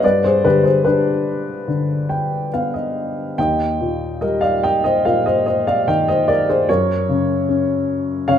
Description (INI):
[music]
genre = classical, lyrical solo piano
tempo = 69-76 BPM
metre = 4/4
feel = rubato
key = Eb major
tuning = A4 = 440 Hz
[part]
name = dark upright piano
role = solo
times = 0.0-8.4 s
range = Eb2 to G5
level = -15 LUFS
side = left 1 dB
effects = none
[sound]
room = moderate recital hall reverb, RT60 1.4 s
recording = minimal, uncompressed stereo recording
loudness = -16 LUFS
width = side -9 dB against mid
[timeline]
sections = 0.0-8.4 A section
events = upright piano fill 1.7-3.4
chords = 0.0 G; 3.4 Eb; 6.7 Gb